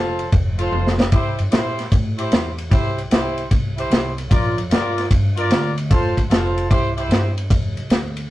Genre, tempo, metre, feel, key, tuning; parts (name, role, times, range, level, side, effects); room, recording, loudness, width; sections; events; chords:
electric blues shuffle; 150 BPM; 4/4; swing 66% on 8ths; F major; A4 = 440 Hz
mellow horn section; stabs; 0.0-7.3 s; E4 to D5; -22 LUFS; equal
upright bass; bass; 0.0-8.3 s; F1 to A2; -24 LUFS; equal
vintage drum kit; drums; 0.2-8.2 s; kick drum, ride cymbal, snare drum, toms; -18 LUFS; equal
moderate booth ambience, RT60 0.2 s; rough rehearsal-room recording; -16 LUFS; side -16 dB against mid
0.0-7.5 A section
drum fill 0.7-1.1
0.0 F; 1.1 C; 4.3 Bb; 5.9 F; 6.7 C; 7.5 F5